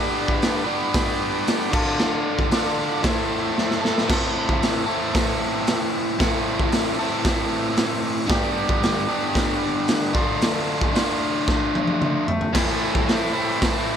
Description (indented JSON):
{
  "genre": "garage rock duo or trio",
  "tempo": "114 BPM",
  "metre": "4/4",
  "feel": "straight",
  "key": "A minor",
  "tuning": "A4 = 445 Hz",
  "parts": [
    { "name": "combo organ", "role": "sustained chords", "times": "0.0-4.1, 12.5-14.0 s", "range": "E4 to D5", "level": "-30 LUFS", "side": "right 1 dB", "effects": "spring reverb" },
    { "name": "biting overdriven guitar", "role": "riff", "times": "0.0-14.0 s", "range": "G2 to B4", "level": "-22 LUFS", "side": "equal", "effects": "spring reverb" },
    { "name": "raw garage drum kit", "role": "drums", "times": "0.3-13.7 s", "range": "crash cymbal, hi-hat, kick drum, snare drum, toms", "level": "-23 LUFS", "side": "equal", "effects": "none" }
  ],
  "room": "light reverb",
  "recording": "none",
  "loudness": "-19 LUFS",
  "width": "side -8 dB against mid",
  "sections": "0.0-4.1 A section; 4.1-14.0 A section",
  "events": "drum fill 3.6-4.1, 11.5-12.5",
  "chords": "0.0 G; 1.7 Dm; 3.0 Am; 8.3 G; 10.1 Dm; 12.5 Am"
}